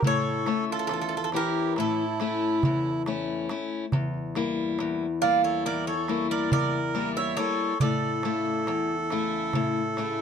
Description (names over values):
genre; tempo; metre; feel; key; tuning
greek folk, Greek bouzouki band; 139 BPM (eighths); 9/8; straight; unclear; A4 = 440 Hz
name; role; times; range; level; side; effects
picked steel-string acoustic guitar; accompaniment; 0.0-10.2 s; E2 to E5; -28 LUFS; left 5 dB; none
darbuka; percussion; 0.0-10.2 s; none; -29 LUFS; right 1 dB; none
Greek bouzouki; melody; 0.1-10.2 s; A4 to F5; -29 LUFS; right 3 dB; none
accordion; second line; 0.1-10.2 s; E4 to D5; -30 LUFS; right 6 dB; none
room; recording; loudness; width
moderate small room reverb, RT60 0.5 s; close, detailed microphones; -24 LUFS; side -7 dB against mid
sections
0.0-10.2 A section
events
none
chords
0.0 A; 3.9 Edim; 7.8 A